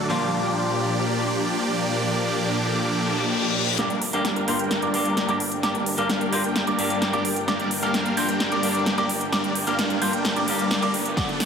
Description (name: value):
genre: EDM, festival progressive house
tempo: 130 BPM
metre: 4/4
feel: straight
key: G minor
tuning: A4 = 440 Hz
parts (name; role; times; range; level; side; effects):
- clean electric guitar; accompaniment; 0.0-11.3 s; G2 to G4; -29 LUFS; left 2 dB; sidechain pumping, digital delay
- lush unison pad; sustained chords; 0.0-11.5 s; Bb2 to A5; -29 LUFS; equal; chorus, phaser, sidechain pumping
- supersaw chords; riff; 0.0-11.4 s; F3 to G5; -24 LUFS; equal; phaser, sidechain pumping, low-pass filter, digital delay
- reverse cymbal and riser; sound effects; 3.0-11.5 s; none; -32 LUFS; left 4 dB; none
- clear baby grand piano; arpeggios; 3.8-11.4 s; D6 to G6; -30 LUFS; right 2 dB; sidechain pumping, low-pass filter, digital delay
- detuned saw bass; bass; 3.8-11.5 s; G1 to D2; -38 LUFS; equal; none
- big-room dance drum kit; drums; 3.8-11.5 s; hi-hat, snare drum; -26 LUFS; equal; overdrive
- electronic kick drum; drums; 11.2-11.3 s; none; -28 LUFS; equal; overdrive
room: moderate lush hall reverb, RT60 1.9 s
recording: dense, heavily limited modern master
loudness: -21 LUFS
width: side -6 dB against mid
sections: 0.0-3.8 A section; 3.8-11.5 B section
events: reverse cymbal 3.0-3.8; build-up 3.8-11.5; drum fill 3.8-11.5; filter sweep on supersaw synth 3.8-11.5; filter sweep on grand piano 3.8-11.5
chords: 0.1 Bb6; 3.8 Gm